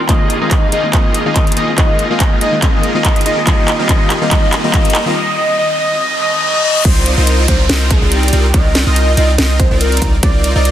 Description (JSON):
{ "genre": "future bass", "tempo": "142 BPM", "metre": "4/4", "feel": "swing 54% on 16ths, half-time", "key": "C minor", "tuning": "A4 = 440 Hz", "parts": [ { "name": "warm velvety synth lead", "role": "melody", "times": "0.0-10.7 s", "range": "G4 to Eb5", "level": "-18 LUFS", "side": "equal", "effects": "chorus, sidechain pumping, tape echo" }, { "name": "shimmering ambient pad", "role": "sustained chords", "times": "0.0-5.1 s", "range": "Eb3 to F4", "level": "-28 LUFS", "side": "left 1 dB", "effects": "none" }, { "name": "long sustained 808-style bass", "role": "bass", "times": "0.0-10.7 s", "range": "Bb1 to Eb2", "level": "-15 LUFS", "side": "equal", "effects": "sidechain pumping, high-pass filter" }, { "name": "riser, reverse cymbal and downlifter", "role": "sound effects", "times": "0.0-10.2 s", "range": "none", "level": "-22 LUFS", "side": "left 1 dB", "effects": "none" }, { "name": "soft round pluck", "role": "accompaniment", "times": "0.1-5.1 s", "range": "Eb3 to F4", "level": "-22 LUFS", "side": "left 4 dB", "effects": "chorus, sidechain pumping, digital delay" }, { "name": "supersaw chords", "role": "riff", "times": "0.1-10.7 s", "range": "Bb3 to F5", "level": "-19 LUFS", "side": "equal", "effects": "cassette tape, sidechain pumping, low-pass filter" }, { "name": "electronic kick drum", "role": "drums", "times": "0.1-10.3 s", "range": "none", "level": "-13 LUFS", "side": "equal", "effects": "small room ambience" }, { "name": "trap drum kit", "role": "drums", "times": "0.1-10.7 s", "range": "crash cymbal, handclaps, hi-hat, snare drum", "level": "-18 LUFS", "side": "equal", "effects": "small room ambience" } ], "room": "light reverb", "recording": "dense, heavily limited modern master", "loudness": "-10 LUFS", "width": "side -11 dB against mid", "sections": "0.0-6.8 A section; 6.8-10.7 B section", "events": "build-up 0.0-6.8; riser 0.0-6.8; drum fill 0.1-5.2; reverse cymbal 6.0-6.8; drop 6.8-10.7", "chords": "0.1 Bb7sus4; 3.5 Eb69; 6.8 Cm11" }